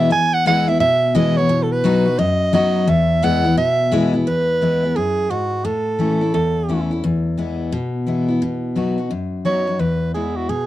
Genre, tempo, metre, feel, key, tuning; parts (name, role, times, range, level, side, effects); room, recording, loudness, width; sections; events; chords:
country; 173 BPM; 4/4; swing 64% on 8ths; E major; A4 = 440 Hz
warm soprano saxophone; melody; 0.0-6.9, 9.5-10.7 s; F#4 to G#5; -19 LUFS; right 3 dB
picked steel-string acoustic guitar; accompaniment; 0.0-10.7 s; E2 to F#4; -18 LUFS; left 2 dB
studio reverb; dry, close 1970s-style studio recording; -16 LUFS; side -14 dB against mid
0.0-4.3 A section; 4.3-9.8 B section
0.0 E; 1.5 B; 2.9 E; 5.6 A; 7.0 E; 8.4 B; 9.8 E